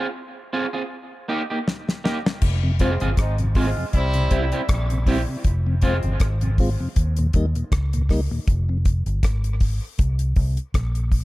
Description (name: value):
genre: dub reggae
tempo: 79 BPM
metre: 4/4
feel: swing 55% on 16ths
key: F minor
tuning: A4 = 441 Hz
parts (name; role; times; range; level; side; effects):
- electric guitar at the edge of break-up; accompaniment; 0.0-6.0 s; Bb3 to Ab4; -28 LUFS; right 2 dB; dub echo
- damped 70s drum kit; drums; 1.7-11.2 s; crash cymbal, hi-hat, kick drum, rim click, snare drum; -22 LUFS; equal; none
- vintage muted fingered electric bass; bass; 2.4-11.2 s; F1 to Eb2; -22 LUFS; equal; none
- mellow tonewheel organ; accompaniment; 2.6-8.8 s; Eb2 to F4; -28 LUFS; left 1 dB; slow rotary speaker
- warm horn section; second line; 2.8-6.1 s; F3 to F4; -30 LUFS; equal; dub echo
room: small room ambience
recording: none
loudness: -19 LUFS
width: side -18 dB against mid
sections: 0.0-2.4 A section; 2.4-11.2 B section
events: drum fill 1.7-2.4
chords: 0.0 Fm; 0.9 Eb; 2.4 Fm; 3.9 C; 5.4 Fm; 7.0 Eb; 8.5 Fm; 10.0 Bbsus2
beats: 0.15 0.90 1.66 | 2.42 3.18 3.93 4.69 | 5.45 6.21 6.96 7.72 | 8.48 9.23 9.99 10.75